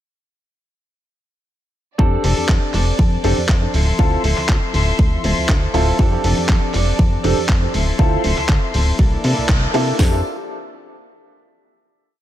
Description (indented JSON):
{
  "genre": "filtered disco house",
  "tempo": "120 BPM",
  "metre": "4/4",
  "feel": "swing 55% on 16ths",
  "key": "F major",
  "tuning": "A4 = 440 Hz",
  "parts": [
    { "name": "warm grand piano", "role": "accompaniment", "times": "2.0-10.2 s", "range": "Bb3 to A4", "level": "-23 LUFS", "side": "equal", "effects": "phaser, sidechain pumping, low-pass filter, analog delay" },
    { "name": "warm chamber string section", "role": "sustained chords", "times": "2.0-10.2 s", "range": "F3 to C6", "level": "-26 LUFS", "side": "equal", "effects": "sidechain pumping, low-pass filter" },
    { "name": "direct-recorded clean electric guitar", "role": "riff", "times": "2.0-10.2 s", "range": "E3 to A4", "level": "-27 LUFS", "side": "left 4 dB", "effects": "sidechain pumping, low-pass filter, analog delay" },
    { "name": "plucky analog bass", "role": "bass", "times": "2.0-10.2 s", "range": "D1 to C3", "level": "-19 LUFS", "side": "equal", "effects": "sidechain pumping, low-pass filter" },
    { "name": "house drum kit", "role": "drums", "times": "2.0-10.1 s", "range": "hi-hat, kick drum, snare drum", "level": "-16 LUFS", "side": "equal", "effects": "none" },
    { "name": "dusty soul sampler-style drum kit", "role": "drums", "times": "2.2-9.8 s", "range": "handclaps, hi-hat", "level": "-25 LUFS", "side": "equal", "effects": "none" }
  ],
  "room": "little or no reverb",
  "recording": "echo-heavy mix",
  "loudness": "-14 LUFS",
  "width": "side -12 dB against mid",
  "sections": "2.0-10.0 groove; 10.0-12.0 final chord",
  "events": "band accent 9.5",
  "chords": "2.0 F6; 3.7 Dm9; 6.0 F6; 7.7 Dm9; 9.0 C13; 10.0 F6"
}